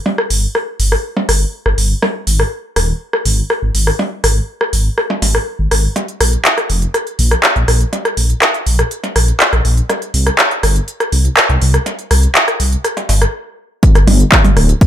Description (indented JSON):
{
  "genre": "melodic techno",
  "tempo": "122 BPM",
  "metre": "4/4",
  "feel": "straight",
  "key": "G phrygian",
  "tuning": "A4 = 440 Hz",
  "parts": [
    { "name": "techno drum kit", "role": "drums", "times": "0.1-14.9 s", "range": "handclaps, hi-hat, percussion blips, rim click", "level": "-14 LUFS", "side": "equal", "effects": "sidechain pumping on perc, high-pass filter on perc, high-pass filter on snare, sidechain pumping on hats, high-pass filter on hats, high-pass filter on room" },
    { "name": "swelling detuned saw bass", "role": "bass", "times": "0.3-14.7 s", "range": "D1 to C2", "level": "-13 LUFS", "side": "equal", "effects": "sidechain pumping" },
    { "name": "electronic kick drum", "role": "drums", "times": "13.8-14.9 s", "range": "none", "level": "-9 LUFS", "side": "equal", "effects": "none" }
  ],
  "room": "light reverb",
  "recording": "none",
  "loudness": "-12 LUFS",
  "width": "side -10 dB against mid",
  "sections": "0.0-13.8 A section; 13.8-14.9 B section",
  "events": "build-up 0.0-13.8; stop 13.3-13.8; drop 13.8-14.9",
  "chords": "none",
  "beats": "| 0.06 0.55 1.04 1.53 | 2.03 2.52 3.01 3.50 | 3.99 4.49 4.98 5.47 | 5.96 6.45 6.94 7.43 | 7.93 8.42 8.91 9.40 | 9.89 10.39 10.88 11.37 | 11.86 12.35 12.85 13.34 | 13.83 14.32 14.81"
}